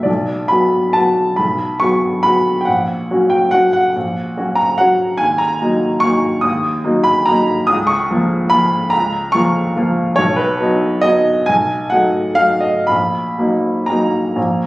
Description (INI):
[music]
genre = classical, piano waltz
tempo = 110-153 BPM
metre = 3/4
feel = rubato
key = Eb minor from 5.2 s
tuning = A4 = 439 Hz
[part]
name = clear upright piano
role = solo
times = 0.0-14.7 s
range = A#1 to Eb6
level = -13 LUFS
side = equal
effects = none
[sound]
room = wet stone room reverb, RT60 0.9 s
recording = recorded on a phone in the room, studio reverb, compression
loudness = -13 LUFS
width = side -19 dB against mid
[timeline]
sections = 0.0-14.7 A section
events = none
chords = 0.1 Bm; 2.7 F#/A#; 5.2 Ebm; 7.7 Bbm/Db; 10.2 B; 11.5 B7; 12.9 Ebm/Bb